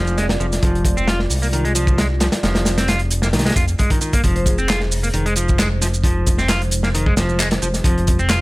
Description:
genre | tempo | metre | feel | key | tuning
breakbeat, breaks | 133 BPM | 4/4 | straight | F dorian | A4 = 440 Hz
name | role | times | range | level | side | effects
dark analog pad | sustained chords | 0.0-8.4 s | Ab3 to D5 | -30 LUFS | right 1 dB | chorus, phaser, sidechain pumping
clean electric guitar | riff | 0.0-8.4 s | Eb3 to F4 | -22 LUFS | equal | tube saturation, low-pass filter, digital delay
fat analog bass | bass | 0.0-8.4 s | F1 to C2 | -20 LUFS | equal | tube saturation
electronic shaker and handclaps | drums | 0.1-8.4 s | none | -25 LUFS | right 2 dB | none
crunchy breakbeat drum kit | drums | 0.2-8.4 s | hi-hat, kick drum, snare drum | -19 LUFS | equal | none
vibraphone with medium hard mallets | melody | 4.4-4.8 s | Ab4 to C5 | -31 LUFS | left 1 dB | telephone sound, digital delay
room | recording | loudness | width
light reverb | none | -15 LUFS | side -21 dB against mid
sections
0.0-8.4 A section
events
none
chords
0.0 Fm

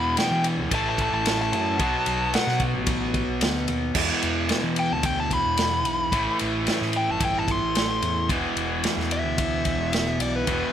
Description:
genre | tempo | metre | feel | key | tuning
blues rock power trio and southern rock | 111 BPM | 4/4 | straight | E minor | A4 = 440 Hz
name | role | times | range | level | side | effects
bluesy overdriven lead guitar | melody | 0.0-10.7 s | B4 to C6 | -26 LUFS | left 1 dB | distortion
cranked stack guitar | riff | 0.0-10.7 s | E2 to B3 | -26 LUFS | equal | overdrive
overdriven fingered electric bass | bass | 0.0-10.6 s | E1 to E3 | -30 LUFS | equal | none
vintage drum kit | drums | 0.2-10.6 s | crash cymbal, kick drum, ride cymbal, snare drum | -27 LUFS | equal | none
room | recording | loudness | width
light reverb | none | -21 LUFS | side -9 dB against mid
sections
0.0-4.0 A section; 4.0-10.7 A section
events
lead electric guitar solo 0.0-10.7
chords
0.0 E5; 0.7 A5; 1.8 B7(no3); 4.0 E5; 6.1 Am7; 8.3 E5

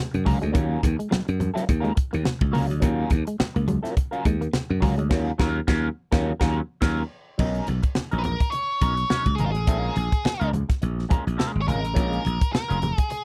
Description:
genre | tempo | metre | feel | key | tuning
funk | 105 BPM | 4/4 | swing 56% on 16ths | Eb minor | A4 = 443 Hz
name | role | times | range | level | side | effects
electric guitar at the edge of break-up | accompaniment | 0.1-13.1 s | Gb3 to Bb4 | -32 LUFS | equal | wah
slap bass | bass | 0.1-12.9 s | F1 to Gb2 | -27 LUFS | equal | none
crisp fusion drum kit | drums | 0.1-13.2 s | crash cymbal, hi-hat, kick drum, snare drum | -26 LUFS | equal | none
congas | percussion | 0.2-13.2 s | none | -34 LUFS | equal | none
clean electric guitar | riff | 0.3-5.1 s | Gb3 to Bb3 | -30 LUFS | equal | none
octave-fuzz lead guitar | melody | 8.2-13.2 s | F4 to C#5 | -30 LUFS | equal | distortion
room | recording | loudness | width
little or no reverb | dry, close 1970s-style studio recording | -24 LUFS | mono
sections
0.0-7.4 A section; 7.4-13.2 B section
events
band accent 5.1-7.4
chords
0.0 Ebm9; 7.4 Bmaj9; 9.7 Bbm7

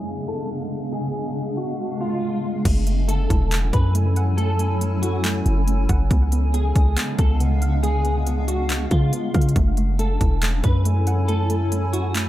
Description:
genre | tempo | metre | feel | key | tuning
hip hop, atmospheric cloud-rap | 139 BPM | 4/4 | half-time | F# minor | A4 = 440 Hz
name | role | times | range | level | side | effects
semi-hollow electric guitar | melody | 0.0-12.1 s | E#4 to B4 | -30 LUFS | left 1 dB | ensemble chorus, analog delay
granular cloud pad | sustained chords | 0.0-12.3 s | C#3 to G#5 | -26 LUFS | equal | built-in reverb, sidechain pumping
soft round pluck | arpeggios | 2.7-12.3 s | A3 to F#5 | -32 LUFS | right 3 dB | chorus, analog delay
warm 808-style bass | bass | 2.7-12.3 s | E1 to C#3 | -20 LUFS | equal | none
trap drum kit | drums | 2.7-12.3 s | crash cymbal, handclaps, hi-hat, kick drum | -22 LUFS | equal | none
room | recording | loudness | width
light reverb, digital ambience | low-pass filter | -18 LUFS | side -14 dB against mid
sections
0.0-2.7 A section; 2.7-12.3 B section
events
filter sweep 0.0-2.7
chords
0.0 C#7b9; 2.7 F#m7; 6.1 C#7b9; 9.6 F#m7

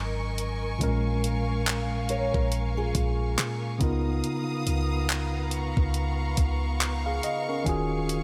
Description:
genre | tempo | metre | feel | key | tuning
contemporary R&B | 70 BPM | 4/4 | swing 58% on 16ths | unclear | A4 = 441 Hz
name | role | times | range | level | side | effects
tine electric piano | accompaniment | 0.0-8.2 s | Ab2 to F5 | -32 LUFS | equal | none
warm studio string section | sustained chords | 0.0-8.2 s | Cb4 to Eb6 | -37 LUFS | equal | none
warm 808-style bass | bass | 0.0-8.2 s | Eb1 to Bb2 | -32 LUFS | equal | none
clean 12-bit digital drum machine | drums | 0.4-8.2 s | handclaps, hi-hat, kick drum | -31 LUFS | equal | none
fingerpicked old ladder-braced acoustic guitar | arpeggios | 2.1-3.8 s | F4 to Db5 | -34 LUFS | equal | delay
room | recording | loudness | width
light reverb | none | -27 LUFS | mono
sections
0.0-8.2 A section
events
none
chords
0.0 Ab9sus4; 0.8 Bbm7; 3.8 Db13; 7.7 Ebm11

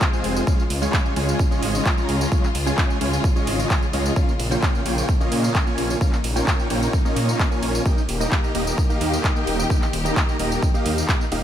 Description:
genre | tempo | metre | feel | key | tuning
EDM, festival progressive house | 130 BPM | 4/4 | straight | unclear | A4 = 440 Hz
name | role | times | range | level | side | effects
warm studio string section | sustained chords | 0.0-11.4 s | C3 to G4 | -29 LUFS | left 3 dB | sidechain pumping
dense compressed supersaw | riff | 0.0-11.4 s | Ab3 to Bb5 | -25 LUFS | right 1 dB | sidechain pumping, ping-pong delay
electronic kick drum | drums | 0.0-11.2 s | none | -21 LUFS | equal | none
pop drum kit | drums | 0.0-11.4 s | handclaps, hi-hat, ride cymbal, tambourine | -27 LUFS | right 1 dB | none
detuned saw bass | bass | 0.2-11.4 s | Eb1 to Bb2 | -24 LUFS | equal | sidechain pumping
room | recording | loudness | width
light reverb, digital ambience | none | -18 LUFS | side -10 dB against mid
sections
0.0-11.4 A section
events
none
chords
0.5 Db; 4.2 Bbm; 7.9 Eb

